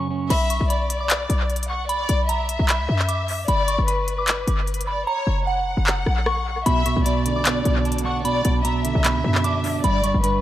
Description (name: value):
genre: hip hop, trap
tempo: 151 BPM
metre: 4/4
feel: half-time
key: B harmonic minor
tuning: A4 = 438 Hz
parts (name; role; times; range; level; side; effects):
- soft synth bell; melody; 0.0-10.4 s; F#5 to D6; -26 LUFS; right 1 dB; chorus, phaser, analog delay
- electric guitar at the edge of break-up; accompaniment; 0.0-0.3, 6.7-10.4 s; F#2 to D4; -24 LUFS; right 5 dB; analog delay
- warm studio violin section; second line; 0.3-10.4 s; B4 to F#5; -27 LUFS; left 3 dB; analog delay
- short 808-style bass; bass; 0.3-10.4 s; F#1 to F#2; -23 LUFS; left 1 dB; none
- trap drum kit; drums; 0.3-10.3 s; crash cymbal, handclaps, hi-hat, rim click; -25 LUFS; left 1 dB; analog delay
room: light reverb, digital ambience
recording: echo-heavy mix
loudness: -19 LUFS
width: side -13 dB against mid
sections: 0.3-10.4 A section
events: break 0.0-0.3; hi-hats muted 5.1-6.7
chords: 0.3 Bm; 3.5 G; 5.1 F#; 6.7 Bm; 9.8 G